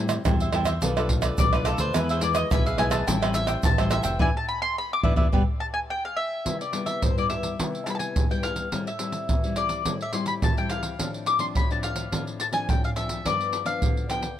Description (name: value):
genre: samba and choro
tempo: 106 BPM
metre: 4/4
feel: straight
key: A minor, C major from 6.5 s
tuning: A4 = 440 Hz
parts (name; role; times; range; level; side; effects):
- nylon-string guitar; accompaniment; 0.0-14.4 s; G2 to F4; -31 LUFS; left 5 dB; none
- fingered electric bass; bass; 0.0-5.4 s; F1 to A2; -28 LUFS; equal; none
- egg shaker, pandeiro, tamborim and surdo; percussion; 0.1-14.4 s; none; -26 LUFS; right 1 dB; none
- cavaquinho; accompaniment; 0.3-5.4 s; E4 to G5; -31 LUFS; right 4 dB; none
- mandolin; melody; 1.4-14.4 s; A4 to D6; -28 LUFS; left 2 dB; none
room: little or no reverb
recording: close, detailed microphones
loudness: -22 LUFS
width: side -11 dB against mid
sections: 0.0-6.5 A section; 6.5-14.4 B section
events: mandolin solo 0.0-6.5; band accent 4.2-6.5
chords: 0.0 Am7; 0.8 Bm7b5; 1.9 E; 3.1 Am7; 4.2 E5; 5.3 G; 6.5 Cmaj7; 8.7 Am7; 11.0 F6/A; 13.3 G7